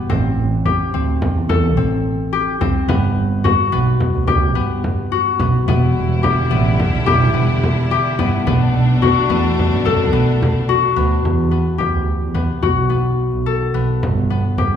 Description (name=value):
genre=contemporary instrumental, chamber music in an uneven meter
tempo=215 BPM (eighths)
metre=5/8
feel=straight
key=E minor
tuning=A4 = 442 Hz
part: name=concert harp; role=arpeggios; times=0.0-14.8 s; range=B3 to A4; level=-19 LUFS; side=left 7 dB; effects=none
part: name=muted double bass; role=bass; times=0.1-14.8 s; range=E1 to F#2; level=-18 LUFS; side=right 2 dB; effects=none
part: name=frame drum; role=percussion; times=0.1-14.8 s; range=none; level=-22 LUFS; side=equal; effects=none
part: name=rich studio string section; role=sustained chords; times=5.7-11.2 s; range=B2 to E4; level=-22 LUFS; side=equal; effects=none
room=wet recital hall reverb, RT60 1.5 s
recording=minimal, uncompressed stereo recording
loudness=-14 LUFS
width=side -8 dB against mid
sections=0.1-11.2 A section; 11.2-14.8 B section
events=none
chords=0.1 Am7; 2.9 Gmaj7; 5.7 Em7; 8.5 Bm7; 11.2 Em; 12.6 B5; 14.0 Gmaj7